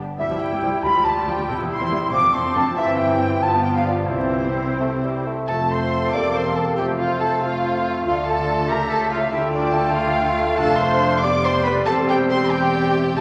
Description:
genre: quick classical-period movement for symphony orchestra.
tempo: 93 BPM (dotted quarters).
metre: 6/8.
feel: rubato.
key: C major, F major from 5.5 s.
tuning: A4 = 440 Hz.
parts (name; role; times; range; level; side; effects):
rich chamber violin section; melody; 0.2-13.2 s; G4 to D6; -28 LUFS; equal; none.
clear clarinet; second line; 0.2-13.2 s; A3 to G4; -33 LUFS; equal; none.
mellow small flute group; second line; 0.2-13.2 s; A4 to D6; -26 LUFS; equal; none.
rich chamber violin section; second line; 0.2-13.2 s; D4 to D6; -30 LUFS; equal; none.
warm bassoon; accompaniment; 0.2-13.2 s; E3 to Bb3; -30 LUFS; equal; none.
warm studio viola section; accompaniment; 0.2-13.2 s; F3 to D5; -30 LUFS; equal; none.
dark studio double bass section; bass; 0.2-13.2 s; E1 to D2; -32 LUFS; equal; none.
warm studio cello section; bass; 0.2-13.2 s; C2 to D3; -34 LUFS; equal; none.
warm French horn section; sustained chords; 0.6-13.2 s; G3 to G4; -28 LUFS; equal; none.
room: wet concert hall reverb, RT60 2.0 s.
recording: vinyl crackle.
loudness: -20 LUFS.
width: mono.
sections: 0.0-5.5 A section; 5.5-13.2 B section.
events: none.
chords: 0.2 C; 0.8 G5/D; 1.5 C/E; 2.1 Dm7/F; 2.8 C/G; 3.4 G7; 4.1 C; 5.5 F; 6.1 C7/E; 6.8 F; 8.1 Dm; 8.7 A7/C#; 9.3 Dm; 10.6 Dm7/F; 11.2 G7/F; 11.9 C/E.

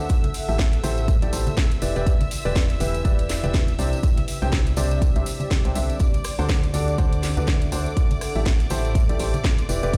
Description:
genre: piano house.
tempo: 122 BPM.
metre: 4/4.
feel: swing 58% on 16ths.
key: unclear.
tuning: A4 = 440 Hz.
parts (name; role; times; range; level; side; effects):
warm symphonic violin section; sustained chords; 0.0-10.0 s; D5 to E6; -38 LUFS; equal; sidechain pumping.
warm upright piano; riff; 0.0-10.0 s; C3 to G5; -31 LUFS; equal; sidechain pumping, delay.
deep dark ambient pad; texture; 0.0-10.0 s; C4 to D6; -37 LUFS; equal; chorus, built-in reverb, sidechain pumping.
electronic kick drum; drums; 0.1-10.0 s; none; -23 LUFS; equal; none.
house drum kit; drums; 0.1-10.0 s; hi-hat, rim click, snare drum; -34 LUFS; equal; none.
tambourine and congas; percussion; 0.1-10.0 s; none; -35 LUFS; equal; none.
organ-like FM bass; bass; 0.5-10.0 s; E1 to D2; -27 LUFS; equal; tube saturation, sidechain pumping.
room: small room ambience.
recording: played on a big sound system in a bare room, stone room reverb.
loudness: -22 LUFS.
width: mono.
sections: 0.0-10.0 A section.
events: none.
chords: 0.1 Am7; 1.8 Em7; 3.8 Csus2; 6.0 D7; 8.0 Am7.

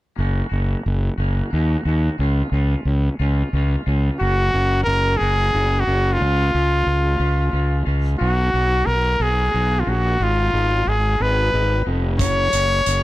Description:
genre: indie rock.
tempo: 60 BPM (dotted quarters).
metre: 6/8.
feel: straight.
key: F# major.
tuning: A4 = 444 Hz.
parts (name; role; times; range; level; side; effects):
twangy electric guitar; riff; 0.2-12.9 s; D#3 to F#4; -32 LUFS; right 1 dB; double-tracked left and right.
fuzz fingered electric bass; bass; 0.2-13.0 s; E#1 to D#2; -19 LUFS; equal; overdrive.
bright trumpet; melody; 4.2-13.0 s; E#4 to C#5; -20 LUFS; equal; tape echo.
loose indie drum kit; drums; 12.2-13.0 s; hi-hat, kick drum; -23 LUFS; equal; none.
room: little or no reverb.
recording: none.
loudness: -17 LUFS.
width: side -16 dB against mid.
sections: 0.2-4.2 A section; 4.2-13.0 B section.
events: none.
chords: 0.2 F#; 2.2 C#; 4.2 F#; 6.2 C#; 8.2 Bsus2; 10.2 G#m; 12.2 F#.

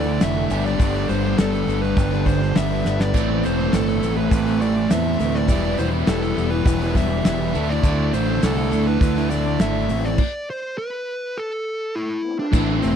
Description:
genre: classic rock.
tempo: 102 BPM.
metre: 4/4.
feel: straight.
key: A minor.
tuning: A4 = 440 Hz.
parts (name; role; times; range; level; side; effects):
dark smooth lead guitar; melody; 0.0-13.0 s; C4 to E5; -27 LUFS; equal; overdrive, slapback echo.
picked steel-string acoustic guitar; accompaniment; 0.0-13.0 s; A2 to B4; -32 LUFS; right 6 dB; none.
tonewheel organ; sustained chords; 0.0-13.0 s; G3 to D5; -36 LUFS; left 1 dB; none.
crunchy overdriven guitar; riff; 0.0-13.0 s; G2 to E4; -26 LUFS; left 13 dB; none.
crunchy overdriven guitar; riff; 0.0-13.0 s; G2 to E4; -26 LUFS; right 1 dB; none.
distorted electric guitar; riff; 0.0-13.0 s; E2 to G4; -26 LUFS; right 12 dB; distortion.
growling fingered electric bass; bass; 0.0-13.0 s; E1 to E2; -24 LUFS; equal; overdrive.
damped 70s drum kit; drums; 0.2-13.0 s; crash cymbal, hi-hat, kick drum, snare drum; -20 LUFS; equal; none.
tube shaker; percussion; 0.2-13.0 s; none; -43 LUFS; left 19 dB; none.
room: little or no reverb.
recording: dry, close 1970s-style studio recording.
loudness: -18 LUFS.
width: side -8 dB against mid.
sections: 0.0-12.5 A section.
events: drum fill 2.9; stop 10.2-12.5.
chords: 0.0 Dsus2; 0.5 Gadd9; 3.1 Amadd9; 5.5 Em; 7.5 Dsus2; 9.9 Am.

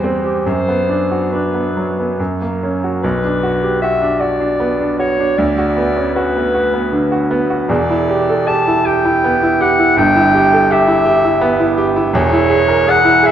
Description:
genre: classical, romantic duo for clarinet and grand piano.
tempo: 68-83 BPM.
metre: 3/4.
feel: rubato.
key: B minor.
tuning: A4 = 439 Hz.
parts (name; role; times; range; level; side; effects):
warm clarinet; melody; 0.0-13.3 s; B4 to A5; -15 LUFS; left 1 dB; none.
bright grand piano; accompaniment; 0.0-13.3 s; E1 to A#4; -14 LUFS; right 2 dB; none.
room: moderate scoring stage reverb, RT60 1.5 s.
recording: dark, warm production.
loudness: -12 LUFS.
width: side -10 dB against mid.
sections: 0.0-3.0 A section; 3.0-13.3 B section.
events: none.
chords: 0.4 Bm/F#; 2.2 F#; 3.0 Bm; 5.4 Bm/D; 7.7 Em7; 10.0 Em/G; 12.2 E6.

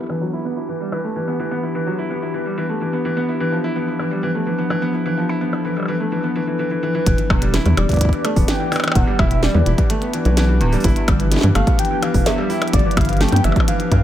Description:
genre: IDM.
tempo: 127 BPM.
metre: 4/4.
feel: straight.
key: E minor.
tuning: A4 = 439 Hz.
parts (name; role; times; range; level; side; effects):
warbly tape-like pad; sustained chords; 0.0-14.0 s; E3 to A4; -24 LUFS; left 3 dB; chorus, built-in reverb.
felt-muted upright piano; arpeggios; 0.0-14.0 s; E2 to E4; -23 LUFS; right 1 dB; low-pass filter, analog delay.
glitchy drum kit; drums; 0.1-1.0, 4.0-14.0 s; hi-hat, percussion blips, snare drum, toms; -24 LUFS; equal; low-pass filter on hats, studio reverb, low-pass filter on perc, low-pass filter on snare, low-pass filter on toms, analog delay.
rubbery square bass; bass; 7.1-14.0 s; D1 to G2; -17 LUFS; equal; none.
electronic kick drum; drums; 7.1-14.0 s; none; -18 LUFS; equal; studio reverb.
warm velvety synth lead; melody; 7.8-14.0 s; D5 to G5; -25 LUFS; equal; chorus, analog delay.
room: moderate spring reverb, RT60 1.5 s, digital ambience.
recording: echo-heavy mix.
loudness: -16 LUFS.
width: side -11 dB against mid.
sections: 0.0-7.1 A section; 7.1-14.0 B section.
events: filter sweep on felt piano 0.0-7.1.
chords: 0.0 Em7; 3.3 G7; 7.1 Em7; 10.8 G7.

